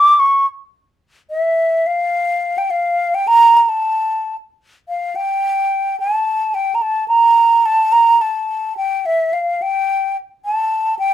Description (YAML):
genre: klezmer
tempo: 108 BPM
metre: 4/4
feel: straight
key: A phrygian dominant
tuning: A4 = 440 Hz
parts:
  - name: mellow hollow silver concert flute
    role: solo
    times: 0.0-11.1 s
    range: E5 to D6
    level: -13 LUFS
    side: equal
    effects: none
room: moderate small room reverb, RT60 0.5 s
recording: none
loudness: -14 LUFS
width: side -11 dB against mid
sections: 0.0-4.9 A section; 4.9-11.1 B section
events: none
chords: none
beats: | 0.45 1.00 1.56 2.11 | 2.67 3.22 3.78 4.33 | 4.88 5.44 5.99 6.55 | 7.10 7.65 8.21 8.76 | 9.31 9.87 10.42 10.97